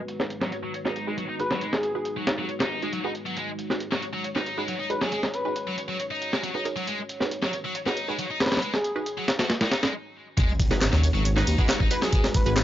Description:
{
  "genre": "breakbeat, breaks",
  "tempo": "137 BPM",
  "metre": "4/4",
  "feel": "straight",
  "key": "G# minor",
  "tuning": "A4 = 439 Hz",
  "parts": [
    { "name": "dark analog pad", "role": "sustained chords", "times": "0.0-12.6 s", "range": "G#3 to C#5", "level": "-36 LUFS", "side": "equal", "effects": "chorus, phaser, sidechain pumping" },
    { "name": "breakbeat sampler-style drum kit", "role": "drums", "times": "0.1-12.6 s", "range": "hi-hat, kick drum, snare drum", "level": "-25 LUFS", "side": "equal", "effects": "low-pass filter on kick, low-pass filter on hats, low-pass filter on snare" },
    { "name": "garage drum kit", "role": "drums", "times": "0.1-12.6 s", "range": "handclaps, ride cymbal, tambourine", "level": "-39 LUFS", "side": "left 1 dB", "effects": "low-pass filter on perc, low-pass filter on cymbals, low-pass filter on snare" },
    { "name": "filtered dub chord stab", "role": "stabs", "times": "0.2-12.5 s", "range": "D#4 to D#5", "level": "-33 LUFS", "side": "right 2 dB", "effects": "phaser, tape echo" },
    { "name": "scooped high-gain guitar", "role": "riff", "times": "0.4-12.2 s", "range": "F#3 to D#4", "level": "-31 LUFS", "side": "left 1 dB", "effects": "distortion, tube saturation, low-pass filter, tape echo" },
    { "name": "airy dreamy lead", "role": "melody", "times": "1.4-2.1, 4.9-5.5, 8.4-9.1, 11.9-12.5 s", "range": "G#4 to B4", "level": "-31 LUFS", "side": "left 1 dB", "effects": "chorus, telephone sound, cassette tape, tape echo" },
    { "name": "impact", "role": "sound effects", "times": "10.4-12.1 s", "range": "none", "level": "-32 LUFS", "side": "equal", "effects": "none" },
    { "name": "dark detuned saw bass", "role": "bass", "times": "10.7-12.6 s", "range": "G#1 to D#2", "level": "-22 LUFS", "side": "equal", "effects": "none" }
  ],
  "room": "light reverb",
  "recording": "dry, gritty hardware recording, nothing above 7.5 kHz",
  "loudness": "-24 LUFS",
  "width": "side -12 dB against mid",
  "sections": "0.0-10.4 A section; 10.4-12.6 B section",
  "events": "filter sweep on synth stab 0.0-10.4; filter sweep on analog synth pad 0.0-10.4; stop 9.9-10.4; drop 10.4-12.6; impact 10.4-12.1",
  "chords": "0.0 G#m7",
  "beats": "0.30 0.74 1.18 | 1.62 2.06 2.49 2.93 | 3.37 3.81 4.25 4.68 | 5.12 5.56 6.00 6.43 | 6.87 7.31 7.75 8.19 | 8.62 9.06 9.50 9.94 | 10.38 10.81 11.25 11.69 | 12.13 12.57"
}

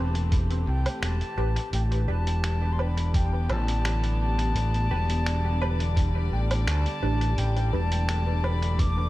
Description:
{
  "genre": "ambient dub",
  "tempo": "85 BPM",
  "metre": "4/4",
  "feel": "straight",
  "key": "unclear",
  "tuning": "A4 = 440 Hz",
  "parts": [
    { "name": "reedy silver concert flute", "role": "melody", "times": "0.0-9.1 s", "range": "G5 to D6", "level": "-34 LUFS", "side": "left 2 dB", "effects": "dub echo" },
    { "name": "warm chamber string section", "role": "sustained chords", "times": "0.0-9.1 s", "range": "D3 to D5", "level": "-35 LUFS", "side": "left 2 dB", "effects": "none" },
    { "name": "filtered dub chord stab", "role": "stabs", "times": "0.0-8.6 s", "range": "C4 to B4", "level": "-37 LUFS", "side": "right 2 dB", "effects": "phaser, analog chorus, dub echo" },
    { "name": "overdriven fingered electric bass", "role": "bass", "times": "0.0-9.1 s", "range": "E1 to D2", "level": "-24 LUFS", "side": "equal", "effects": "tube saturation" },
    { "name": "lo-fi sampler-style drum kit", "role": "drums", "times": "0.2-8.9 s", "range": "finger snaps, hi-hat, woodblock", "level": "-35 LUFS", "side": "right 1 dB", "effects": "dub echo" },
    { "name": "electronic kick drum", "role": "drums", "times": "0.3-8.9 s", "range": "none", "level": "-24 LUFS", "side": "equal", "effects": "none" }
  ],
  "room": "light reverb",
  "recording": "none",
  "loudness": "-23 LUFS",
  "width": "side -17 dB against mid",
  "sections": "0.0-9.1 A section",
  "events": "none",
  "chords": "0.0 Am9; 1.7 G",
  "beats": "0.32 1.02 | 1.73 2.44 3.14 3.85 | 4.55 5.26 5.97 6.67 | 7.38 8.08 8.79"
}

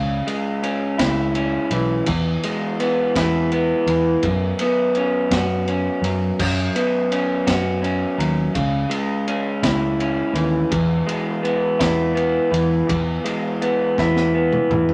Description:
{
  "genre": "psychedelic rock",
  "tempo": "56 BPM (dotted quarters)",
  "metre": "6/8",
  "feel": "straight",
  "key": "E major",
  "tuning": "A4 = 440 Hz",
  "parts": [
    { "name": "electric guitar through a small old amp", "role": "riff", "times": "0.0-14.9 s", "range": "E2 to F#4", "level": "-22 LUFS", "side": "equal", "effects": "none" },
    { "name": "picked electric bass", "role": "bass", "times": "0.0-14.9 s", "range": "B1 to F#2", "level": "-25 LUFS", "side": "equal", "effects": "none" },
    { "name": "crunchy breakbeat drum kit", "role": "drums", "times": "0.3-14.9 s", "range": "crash cymbal, kick drum, ride cymbal, snare drum, toms", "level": "-29 LUFS", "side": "equal", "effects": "none" }
  ],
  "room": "moderate studio reverb, RT60 0.5 s",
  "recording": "none",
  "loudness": "-20 LUFS",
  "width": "mono",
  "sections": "0.0-14.9 A section",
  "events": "drum fill 14.0-14.9",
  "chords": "0.0 C#m; 2.1 E; 4.2 F#sus4; 8.6 C#m; 10.7 E",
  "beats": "0.99 | 2.07 3.15 | 4.23 5.31 | 6.39 7.47 | 8.56 9.64 | 10.72 11.80 | 12.89 13.97"
}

